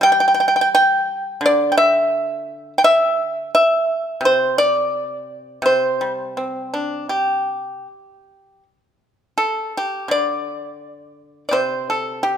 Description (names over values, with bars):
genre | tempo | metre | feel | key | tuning
chinese traditional, Chinese solo plucked strings | 77-87 BPM | 4/4 | rubato | C gong mode | A4 = 439 Hz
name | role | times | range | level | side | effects
pipa | solo | 0.0-12.4 s | C3 to G5 | -16 LUFS | equal | none
room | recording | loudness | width
light reverb | minimal, uncompressed stereo recording | -16 LUFS | side -9 dB against mid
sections
0.0-8.6 A section; 8.6-12.4 B section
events
none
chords
none